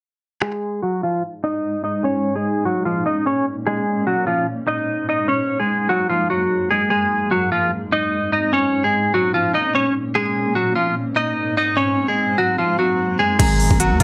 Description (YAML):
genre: hip hop, trap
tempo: 148 BPM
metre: 4/4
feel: half-time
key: unclear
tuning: A4 = 436 Hz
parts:
  - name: direct-recorded clean electric guitar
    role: melody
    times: 0.4-14.0 s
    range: F3 to Eb5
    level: -20 LUFS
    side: equal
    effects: low-pass filter
  - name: granular cloud pad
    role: sustained chords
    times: 1.3-14.0 s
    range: Gb2 to Eb4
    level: -28 LUFS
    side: equal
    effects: built-in reverb, low-pass filter
  - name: soft octave-layered synth lead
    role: second line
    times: 13.4-14.0 s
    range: Bb5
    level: -29 LUFS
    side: equal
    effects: chorus, tremolo, slapback echo
  - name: growling 808-style bass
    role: bass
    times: 13.4-14.0 s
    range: Ab1 to Ab2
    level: -21 LUFS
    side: equal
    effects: none
  - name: trap drum kit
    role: drums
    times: 13.4-14.0 s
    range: crash cymbal, hi-hat, kick drum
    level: -20 LUFS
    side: equal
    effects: none
  - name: impact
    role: sound effects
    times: 13.6-14.0 s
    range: none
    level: -28 LUFS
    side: equal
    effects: none
room: moderate studio ambience, RT60 0.5 s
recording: none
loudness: -20 LUFS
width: mono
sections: 0.4-13.4 A section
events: filter sweep 0.4-13.4; impact 13.4-14.0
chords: 0.4 Ab5; 2.0 Bbm; 3.7 Ab5; 5.3 Gbadd9; 6.9 Ab; 8.5 Bbm; 10.2 Ab; 11.8 Gbadd9; 13.4 Ab